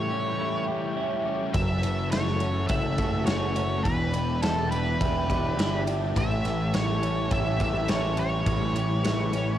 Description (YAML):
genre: rock, shoegaze and dream pop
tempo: 104 BPM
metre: 4/4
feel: straight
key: A mixolydian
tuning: A4 = 440 Hz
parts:
  - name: octave-fuzz lead guitar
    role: melody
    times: 0.0-9.6 s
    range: A4 to E5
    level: -31 LUFS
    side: equal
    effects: distortion, cassette tape, tape echo
  - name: warm analog pad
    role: sustained chords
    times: 0.0-9.6 s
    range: E4 to B5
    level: -38 LUFS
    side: equal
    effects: chorus, tremolo
  - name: direct-recorded clean electric guitar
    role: arpeggios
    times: 0.0-9.6 s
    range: E3 to G4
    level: -37 LUFS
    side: left 8 dB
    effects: lush chorus, tape echo
  - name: thick fuzz guitar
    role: riff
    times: 0.0-9.6 s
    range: E2 to F#4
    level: -32 LUFS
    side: left 6 dB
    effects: distortion, wide subtle chorus
  - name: twelve-string electric guitar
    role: riff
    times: 0.0-9.6 s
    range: E2 to F#4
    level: -31 LUFS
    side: right 8 dB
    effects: reverse reverb
  - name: growling picked electric bass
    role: bass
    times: 1.5-9.6 s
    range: E1 to A1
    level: -29 LUFS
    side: equal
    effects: overdrive
  - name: gated 80s drum kit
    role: drums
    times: 1.5-9.5 s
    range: kick drum, ride cymbal, snare drum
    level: -30 LUFS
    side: equal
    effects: cassette tape
room: light reverb, small room ambience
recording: home recording on cassette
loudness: -24 LUFS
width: side -11 dB against mid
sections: 0.0-9.6 A section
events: none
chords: 0.0 A7; 1.5 F#m7; 3.9 Em7; 6.2 A7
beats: 0.39 0.97 | 1.55 2.12 2.70 3.28 | 3.85 4.43 5.01 5.58 | 6.16 6.74 7.31 7.89 | 8.46 9.04